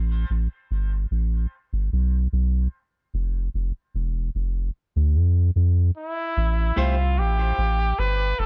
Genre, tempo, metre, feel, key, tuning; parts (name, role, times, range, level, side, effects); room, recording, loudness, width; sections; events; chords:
dub reggae; 74 BPM; 4/4; straight; A minor; A4 = 445 Hz
soft dub sub bass; bass; 0.0-8.5 s; E1 to F2; -23 LUFS; equal
warm trumpet; melody; 6.0-8.5 s; E4 to B4; -28 LUFS; equal; dub echo
clean electric guitar; accompaniment; 6.8-6.9 s; A3 to C5; -36 LUFS; equal; tremolo, dub echo
studio ambience; echo-heavy mix; -24 LUFS; mono
0.0-6.4 A section; 6.4-8.5 B section
break 0.0-6.4
0.0 Gsus2; 1.5 N.C.; 4.7 Dm; 6.4 Am7